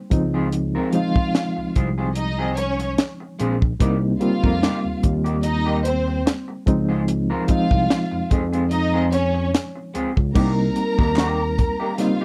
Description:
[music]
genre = lush 1970s-style soul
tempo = 73 BPM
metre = 4/4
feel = swing 54% on 16ths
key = C phrygian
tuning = A4 = 439 Hz
[part]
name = reed electric piano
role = accompaniment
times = 0.0-12.2 s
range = F3 to F4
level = -26 LUFS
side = equal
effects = fast tremolo
[part]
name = barky tine electric piano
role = bass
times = 0.1-11.6 s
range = Bb1 to F2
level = -26 LUFS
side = equal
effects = overdrive
[part]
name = tight funk drum kit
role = drums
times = 0.1-12.2 s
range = crash cymbal, hi-hat, kick drum, snare drum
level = -23 LUFS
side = equal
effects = none
[part]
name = electric guitar through a small old amp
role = riff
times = 0.3-12.2 s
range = G3 to Bb4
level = -30 LUFS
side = equal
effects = lush chorus
[part]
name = warm studio string section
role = second line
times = 0.9-12.2 s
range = C4 to Bb5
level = -28 LUFS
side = equal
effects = none
[part]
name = group handclap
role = percussion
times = 11.2-11.4 s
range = none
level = -36 LUFS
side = equal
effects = none
[sound]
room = little or no reverb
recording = dry, close 1970s-style studio recording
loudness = -21 LUFS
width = mono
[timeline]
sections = 0.0-10.4 A section; 10.4-12.2 B section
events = none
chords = 0.1 Dbmaj7; 3.8 Cm7; 6.7 Dbmaj7; 10.4 Cm7

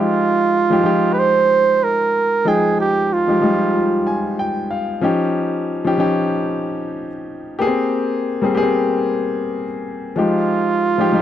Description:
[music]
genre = soul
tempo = 93 BPM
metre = 4/4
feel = swing 58% on 16ths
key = F minor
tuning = A4 = 440 Hz
[part]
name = warm flugelhorn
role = melody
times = 0.0-4.4, 10.2-11.2 s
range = F4 to C5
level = -16 LUFS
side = right 4 dB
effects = none
[part]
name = warm concert grand piano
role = accompaniment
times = 0.0-11.2 s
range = F3 to Ab5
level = -18 LUFS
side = left 2 dB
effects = none
[sound]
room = studio reverb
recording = dry, close 1970s-style studio recording, faint mains hum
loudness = -15 LUFS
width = side -11 dB against mid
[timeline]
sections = 0.0-11.2 A section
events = grand piano fill 3.7-5.0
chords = 0.0 Fm9; 5.0 Eb9; 7.6 Abmaj9; 10.2 Fm9

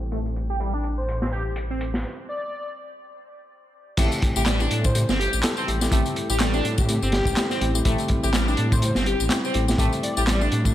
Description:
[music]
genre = breakbeat, breaks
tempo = 124 BPM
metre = 4/4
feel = swing 57% on 16ths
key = A minor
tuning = A4 = 441 Hz
[part]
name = dark analog pad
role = sustained chords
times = 0.0-10.7 s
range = G3 to A4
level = -34 LUFS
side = right 1 dB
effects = chorus, sidechain pumping
[part]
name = dark detuned saw bass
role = bass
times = 0.0-10.7 s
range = G1 to A2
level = -24 LUFS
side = equal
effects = none
[part]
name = overdriven synth lead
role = riff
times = 0.1-10.5 s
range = G3 to G4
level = -28 LUFS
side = equal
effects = phaser, tube saturation, dub echo
[part]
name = crunchy breakbeat drum kit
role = drums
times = 0.1-10.7 s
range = crash cymbal, hi-hat, kick drum, snare drum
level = -25 LUFS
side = equal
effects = low-pass filter on kick, low-pass filter on hats, low-pass filter on cymbals, low-pass filter on snare, low-pass filter on room
[part]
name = airy dreamy lead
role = melody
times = 1.0-10.4 s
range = G4 to D5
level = -35 LUFS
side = left 1 dB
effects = chorus, AM radio sound, cassette tape, dub echo
[part]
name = tine electric piano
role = stabs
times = 4.0-10.5 s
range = A3 to G4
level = -30 LUFS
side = left 2 dB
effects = dub echo
[part]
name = electronic tambourine and handclaps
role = drums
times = 4.0-10.7 s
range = none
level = -30 LUFS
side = left 3 dB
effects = none
[sound]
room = studio ambience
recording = low-pass filter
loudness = -20 LUFS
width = side -13 dB against mid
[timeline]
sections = 0.0-4.0 A section; 4.0-10.7 B section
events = filter sweep 0.0-4.0; break 2.1-4.0; drop 4.0-10.7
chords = 0.0 Am7

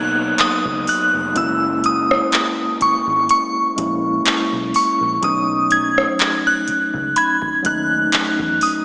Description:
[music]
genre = contemporary R&B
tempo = 62 BPM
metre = 4/4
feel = swing 54% on 16ths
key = unclear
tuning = A4 = 441 Hz
[part]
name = glassy synth bell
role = melody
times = 0.0-8.8 s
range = C#6 to G#6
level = -17 LUFS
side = equal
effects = chorus, diffuse ambient delay
[part]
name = mellow tine electric piano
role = accompaniment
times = 0.0-8.8 s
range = F#3 to E4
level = -22 LUFS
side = equal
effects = medium stereo tremolo
[part]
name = vintage muted fingered electric bass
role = bass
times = 0.0-8.6 s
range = E#1 to E2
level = -30 LUFS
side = equal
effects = none
[part]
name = downlifter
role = sound effects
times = 0.0-5.2 s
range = none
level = -32 LUFS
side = equal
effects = none
[part]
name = booming analog drum machine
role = drums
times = 0.4-8.8 s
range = handclaps, hi-hat, kick drum, rim click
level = -20 LUFS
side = equal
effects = none
[part]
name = mallet-like synth pluck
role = texture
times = 7.2-8.7 s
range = B5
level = -23 LUFS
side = equal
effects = chorus
[sound]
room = wet lush hall reverb, RT60 2.7 s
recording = dreamy mix soaked in reverb, small speaker sound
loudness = -15 LUFS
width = side -28 dB against mid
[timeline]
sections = 0.0-8.8 A section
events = none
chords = 0.0 G#m7 (rootless); 1.4 F#7; 5.2 B7

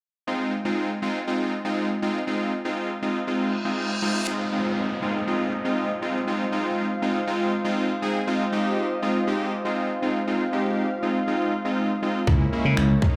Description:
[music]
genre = dance-pop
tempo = 120 BPM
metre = 4/4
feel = straight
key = Ab major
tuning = A4 = 437 Hz
[part]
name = big bright polysynth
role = accompaniment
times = 0.3-13.2 s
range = Ab3 to Ab4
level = -26 LUFS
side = equal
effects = sidechain pumping, slapback echo
[part]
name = reverse cymbal and downlifter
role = sound effects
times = 3.5-8.3 s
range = none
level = -36 LUFS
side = equal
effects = none
[part]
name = warm analog pad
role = sustained chords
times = 4.3-13.2 s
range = Fb4 to F5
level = -33 LUFS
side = equal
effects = chorus, sidechain pumping
[part]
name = slap bass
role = bass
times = 12.3-12.9 s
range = Db2 to Db3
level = -22 LUFS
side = equal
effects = sidechain pumping
[part]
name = minimal click drum kit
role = drums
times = 12.3-13.1 s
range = finger snaps, kick drum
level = -24 LUFS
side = equal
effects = none
[sound]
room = light reverb, digital ambience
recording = live gig heard through the venue's PA, club reverb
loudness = -25 LUFS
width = mono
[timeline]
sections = 0.3-4.3 A section; 4.3-13.2 B section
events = reverse cymbal 3.5-4.3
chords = 0.3 Ab6; 8.3 Fm7; 12.3 Dbm6

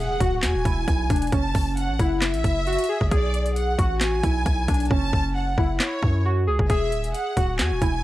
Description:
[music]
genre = hip hop, trap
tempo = 134 BPM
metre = 4/4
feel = half-time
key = F# minor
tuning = A4 = 440 Hz
[part]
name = warbly lo-fi synth keys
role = melody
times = 0.0-8.0 s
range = C#4 to G#4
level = -27 LUFS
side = left 1 dB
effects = chorus
[part]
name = rich studio violin section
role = second line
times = 0.0-8.0 s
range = C#5 to A5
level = -29 LUFS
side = right 1 dB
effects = analog delay
[part]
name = impact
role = sound effects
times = 0.0-1.3 s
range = none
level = -35 LUFS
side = equal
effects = none
[part]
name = hard-hitting 808-style bass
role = bass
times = 0.2-8.0 s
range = D1 to F#2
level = -24 LUFS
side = equal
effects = none
[part]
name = trap drum kit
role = drums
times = 0.2-7.9 s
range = handclaps, hi-hat, kick drum, snare drum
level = -24 LUFS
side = equal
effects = overdrive
[sound]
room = little or no reverb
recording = dry, gritty hardware recording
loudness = -20 LUFS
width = side -15 dB against mid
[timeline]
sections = 0.0-8.0 A section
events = impact 0.0-1.3; hi-hats muted 4.9-6.7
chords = 0.0 Eadd9; 1.3 F#m; 3.1 Bm; 4.9 F#m; 6.7 Eadd9

